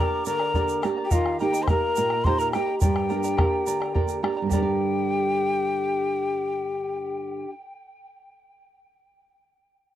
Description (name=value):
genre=andean folk, Andean ensemble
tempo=71 BPM (dotted quarters)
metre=6/8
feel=straight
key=G minor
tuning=A4 = 440 Hz
part: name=breathy mellow quena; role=melody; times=0.0-7.5 s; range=F5 to C6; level=-29 LUFS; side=left 1 dB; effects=tape echo
part: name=breathy bright large pan pipes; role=second line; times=0.0-7.5 s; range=F4 to C5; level=-27 LUFS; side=left 5 dB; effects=none
part: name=charango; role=accompaniment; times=0.0-8.0 s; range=G4 to Bb5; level=-32 LUFS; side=right 3 dB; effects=none
part: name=flamenco guitar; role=accompaniment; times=0.0-7.6 s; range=G2 to D5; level=-28 LUFS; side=right 6 dB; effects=none
part: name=egg shaker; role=percussion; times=0.3-4.8 s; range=none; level=-39 LUFS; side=right 12 dB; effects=none
part: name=bombo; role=percussion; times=0.4-4.8 s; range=none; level=-25 LUFS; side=equal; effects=none
room=little or no reverb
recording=dry, close 1970s-style studio recording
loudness=-22 LUFS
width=side -12 dB against mid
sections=0.0-4.5 A section; 4.5-7.9 B section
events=none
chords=0.0 Gm; 1.1 Eb; 2.8 Gm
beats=0.25 | 1.11 1.96 | 2.81 3.66 | 4.50 5.35 | 6.20 7.04